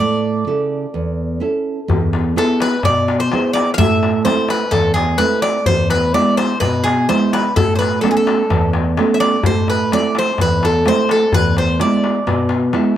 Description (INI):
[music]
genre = greek folk, Greek bouzouki band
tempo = 127 BPM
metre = 4/4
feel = straight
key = unclear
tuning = A4 = 439 Hz
[part]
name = Greek bouzouki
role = melody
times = 0.0-12.5 s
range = G#4 to F5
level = -18 LUFS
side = equal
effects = none
[part]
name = nylon-string guitar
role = accompaniment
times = 0.0-13.0 s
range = E2 to A4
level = -17 LUFS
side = right 2 dB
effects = none
[part]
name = darbuka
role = percussion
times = 1.9-12.9 s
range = none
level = -20 LUFS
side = left 4 dB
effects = none
[sound]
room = small room reverb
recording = dry, close 1970s-style studio recording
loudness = -14 LUFS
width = side -11 dB against mid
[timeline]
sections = 0.0-1.9 A section; 1.9-13.0 B section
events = break 0.0-1.9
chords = 0.0 A; 1.9 E; 3.8 Am; 5.7 E; 7.6 Aadd9; 9.4 Am; 11.3 E